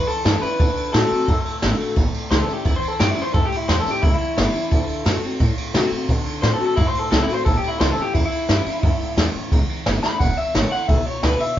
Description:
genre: rockabilly.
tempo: 175 BPM.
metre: 4/4.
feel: straight.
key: unclear.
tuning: A4 = 439 Hz.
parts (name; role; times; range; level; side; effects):
electric guitar through a small old amp; melody; 0.0-11.6 s; E4 to B5; -23 LUFS; left 1 dB; none.
picked steel-string acoustic guitar; accompaniment; 0.0-11.6 s; E2 to F#4; -27 LUFS; left 3 dB; none.
upright bass; bass; 0.0-11.4 s; E1 to C3; -22 LUFS; equal; none.
jazz brush drum kit; drums; 0.1-11.5 s; kick drum, ride cymbal, snare drum; -21 LUFS; equal; none.
room: moderate studio reverb, RT60 0.5 s.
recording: band playing live in one room, nothing above 7.5 kHz.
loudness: -17 LUFS.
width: side -12 dB against mid.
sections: 0.0-11.6 A section.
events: drum fill 10.0.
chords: 0.0 A7; 0.6 D7; 2.0 A7; 4.7 D7; 7.5 A7; 10.2 E7.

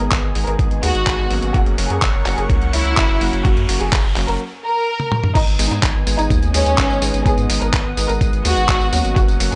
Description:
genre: italo disco.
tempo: 126 BPM.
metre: 4/4.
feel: straight.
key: G# minor.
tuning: A4 = 438 Hz.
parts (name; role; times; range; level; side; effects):
warm symphonic violin section; melody; 0.0-9.6 s; C#4 to A#4; -24 LUFS; equal; tape echo.
lush unison pad; sustained chords; 0.0-9.6 s; B3 to D#6; -30 LUFS; equal; chorus.
clear electric grand piano; stabs; 0.0-9.6 s; F#3 to G#4; -29 LUFS; equal; low-pass filter.
round analog bass; bass; 0.0-9.6 s; F#1 to G#2; -23 LUFS; equal; none.
dusty soul sampler-style drum kit; drums; 0.0-9.6 s; crash cymbal, handclaps, hi-hat, tambourine, toms; -24 LUFS; equal; none.
riser; sound effects; 0.6-4.4 s; none; -36 LUFS; equal; none.
electronic kick drum; drums; 0.1-9.3 s; none; -21 LUFS; equal; none.
room: digital ambience.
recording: dry, gritty hardware recording, nothing above 10.7 kHz.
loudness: -17 LUFS.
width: mono.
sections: 0.0-5.4 A section; 5.4-9.6 B section.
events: break 4.4-5.4; drum fill 5.0-5.4.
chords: 0.0 G#m; 1.5 F#; 5.4 G#m.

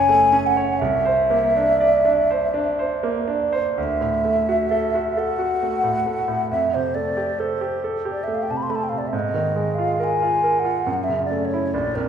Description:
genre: classical, impressionist duo for flute and grand piano.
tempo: 59-71 BPM.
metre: 3/4.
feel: rubato.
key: unclear.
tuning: A4 = 440 Hz.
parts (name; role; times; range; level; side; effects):
mellow hollow concert flute; melody; 0.0-12.1 s; Bb4 to C6; -20 LUFS; left 1 dB; none.
clear concert grand piano; accompaniment; 0.0-12.1 s; F#1 to E5; -22 LUFS; right 3 dB; none.
room: wet recital hall reverb, RT60 1.8 s.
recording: recorded in a church or concert hall.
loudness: -18 LUFS.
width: side -8 dB against mid.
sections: 0.0-3.8 A section; 3.8-12.1 B section.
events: none.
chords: 0.0 F#m7; 0.8 C9; 3.8 Dadd9; 6.5 Fadd9; 9.1 G#sus2; 10.9 F#m7.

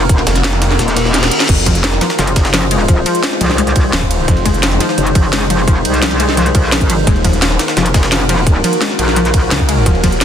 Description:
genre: dark technical drum and bass.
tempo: 172 BPM.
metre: 4/4.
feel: straight.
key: F phrygian.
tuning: A4 = 440 Hz.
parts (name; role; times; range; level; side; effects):
metallic inharmonic drone; sustained chords; 0.0-10.2 s; Eb3 to C5; -18 LUFS; equal; chorus, built-in reverb, sidechain pumping.
metallic wobble bass; bass; 0.0-9.5 s; Eb1 to C2; -15 LUFS; equal; chorus, tube saturation.
drum and bass drum kit; drums; 0.1-10.2 s; crash cymbal, hi-hat, ride cymbal, snare drum; -17 LUFS; equal; none.
electronic kick drum; drums; 0.1-10.1 s; none; -12 LUFS; equal; none.
jungle sampler-style drum kit; drums; 0.1-10.2 s; hi-hat, snare drum; -24 LUFS; equal; none.
snarling distorted saw bass; bass; 0.3-4.8, 7.1-10.2 s; Eb1 to Db2; -15 LUFS; equal; overdrive, sidechain pumping.
reverse cymbal; sound effects; 0.9-1.5 s; none; -21 LUFS; left 2 dB; none.
analog pluck; arpeggios; 1.7-10.1 s; F3 to Ab3; -19 LUFS; left 3 dB; chorus, sidechain pumping, ping-pong delay.
room: light reverb, digital ambience.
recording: dense, heavily limited modern master.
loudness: -10 LUFS.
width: side -9 dB against mid.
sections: 0.0-10.2 A section.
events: kick drops out 0.8-1.5; reverse cymbal 0.9-1.5; drum fill 1.1-1.5.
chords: 0.0 Ebm; 1.5 Fm7; 7.1 Ebm.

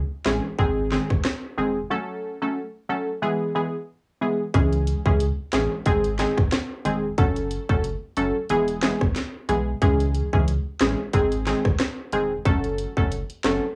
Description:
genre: dancehall.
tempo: 91 BPM.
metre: 4/4.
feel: swing 56% on 16ths.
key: C# minor.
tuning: A4 = 440 Hz.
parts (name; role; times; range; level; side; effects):
warm sub bass; bass; 0.0-13.6 s; E1 to C#2; -29 LUFS; equal; none.
wavetable chord stab; accompaniment; 0.3-13.7 s; D#3 to A4; -26 LUFS; equal; cassette tape.
island pop drum kit; drums; 0.3-13.6 s; hi-hat, kick drum, rim click, snare drum; -26 LUFS; equal; cassette tape.
room: light reverb.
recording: home recording on cassette, small room ambience.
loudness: -24 LUFS.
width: mono.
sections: 0.0-4.5 A section; 4.5-13.8 B section.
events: break 1.9-4.5.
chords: 0.0 C#m; 0.6 G#; 1.9 F#m; 3.2 E; 4.5 C#m; 5.9 G#; 7.2 F#m; 8.5 E; 9.8 C#m; 11.1 G#; 12.5 F#m.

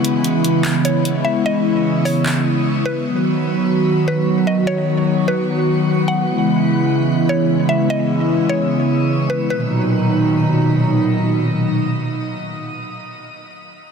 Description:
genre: hip hop, atmospheric cloud-rap.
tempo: 149 BPM.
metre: 4/4.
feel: half-time.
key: B major.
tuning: A4 = 441 Hz.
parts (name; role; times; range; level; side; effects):
hollow soft pad; sustained chords; 0.0-13.3 s; A#2 to F#4; -16 LUFS; equal; chorus.
trap drum kit; drums; 0.0-2.4 s; handclaps, hi-hat; -28 LUFS; equal; none.
mallet-like synth pluck; melody; 0.8-10.7 s; B4 to F#5; -24 LUFS; equal; chorus, tape echo.
room: moderate shimmer reverb, RT60 5.5 s.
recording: dense, heavily limited modern master.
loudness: -15 LUFS.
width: side -6 dB against mid.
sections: 0.0-9.5 A section; 9.5-12.7 B section.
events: break 0.0-3.1.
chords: 0.0 C#m7; 3.1 B; 6.3 C#m7; 9.5 Bmaj7.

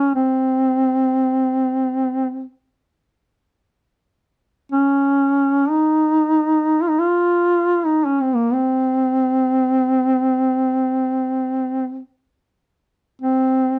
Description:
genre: caucasian folk, Caucasian lament.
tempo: free time.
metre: none.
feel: none.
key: C phrygian.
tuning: A4 = 440 Hz.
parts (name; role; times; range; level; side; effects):
mellow duduk; solo; 0.0-13.8 s; Bb3 to F4; -18 LUFS; equal; none.
room: moderate studio reverb, RT60 0.5 s.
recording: dark, warm production.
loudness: -19 LUFS.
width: mono.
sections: 0.0-13.8 A section.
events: none.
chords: none.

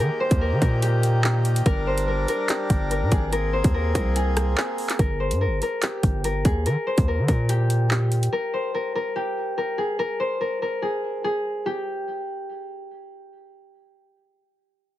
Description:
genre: hip hop, drill.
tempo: 144 BPM.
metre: 4/4.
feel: half-time.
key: G phrygian.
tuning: A4 = 440 Hz.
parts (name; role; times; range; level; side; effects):
concert harp; melody; 0.0-14.0 s; G4 to C5; -26 LUFS; left 1 dB; low-pass filter.
accordion; sustained chords; 0.0-5.0 s; Eb3 to Bb4; -31 LUFS; left 1 dB; none.
hard-hitting 808-style bass; bass; 0.0-8.3 s; G1 to Eb3; -22 LUFS; equal; none.
drill drum kit; drums; 0.3-8.3 s; handclaps, hi-hat, kick drum, rim click; -24 LUFS; equal; none.
room: little or no reverb.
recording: heavily compressed radio sound, multiband compression.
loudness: -21 LUFS.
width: side -14 dB against mid.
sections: 0.0-5.0 A section; 5.0-11.7 B section; 11.7-15.0 C section.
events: none.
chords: 0.0 Eb; 1.7 Gm; 3.3 Abadd9; 5.0 Gmadd11; 6.7 Eb; 8.3 N.C..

